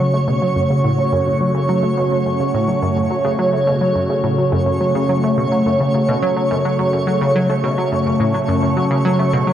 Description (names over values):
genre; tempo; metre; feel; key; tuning
ambient; 106 BPM; 4/4; straight; F# minor; A4 = 439 Hz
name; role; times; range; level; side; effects
phased analog pad; sustained chords; 0.0-9.5 s; C#3 to C#5; -17 LUFS; equal; phaser, chorus
analog pluck; riff; 0.0-9.5 s; F#2 to A3; -20 LUFS; equal; chorus, analog delay
twinkling granular texture; texture; 0.0-9.5 s; C#5; -23 LUFS; right 3 dB; built-in reverb
room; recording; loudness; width
wet concert hall reverb, RT60 2.3 s; worn, warbling old tape, cassette tape, warbly pitch drift; -15 LUFS; side -10 dB against mid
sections
0.0-9.5 A section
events
none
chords
0.0 F#m